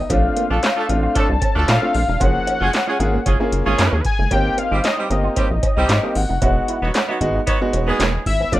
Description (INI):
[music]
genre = early-eighties boogie funk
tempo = 114 BPM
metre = 4/4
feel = straight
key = unclear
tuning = A4 = 440 Hz
[part]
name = fat analog lead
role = melody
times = 0.0-8.6 s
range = D5 to A5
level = -23 LUFS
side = left 3 dB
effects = chorus, plate reverb
[part]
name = electric guitar with an envelope filter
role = riff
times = 0.0-8.5 s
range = Ab3 to F4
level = -30 LUFS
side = right 6 dB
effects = analog chorus
[part]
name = rubbery square bass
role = bass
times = 0.0-8.6 s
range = Fb1 to Bb2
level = -20 LUFS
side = equal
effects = none
[part]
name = clear concert grand piano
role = accompaniment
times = 0.1-8.6 s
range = F3 to Ab4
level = -23 LUFS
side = equal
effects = plate reverb
[part]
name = electro analog drum machine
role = drums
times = 0.1-8.6 s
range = handclaps, hi-hat, kick drum, snare drum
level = -21 LUFS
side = equal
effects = none
[part]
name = cowbell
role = percussion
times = 0.1-8.6 s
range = none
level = -28 LUFS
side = right 6 dB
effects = none
[part]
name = warm horn section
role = second line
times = 0.5-8.2 s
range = F#3 to A4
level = -23 LUFS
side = right 2 dB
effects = plate reverb
[sound]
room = light reverb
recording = rough home demo mix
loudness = -16 LUFS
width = side -15 dB against mid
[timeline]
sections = 0.0-8.6 A section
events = none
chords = 0.1 Bbmaj9; 2.2 Gbmaj9; 4.3 Abmaj9; 6.4 Emaj9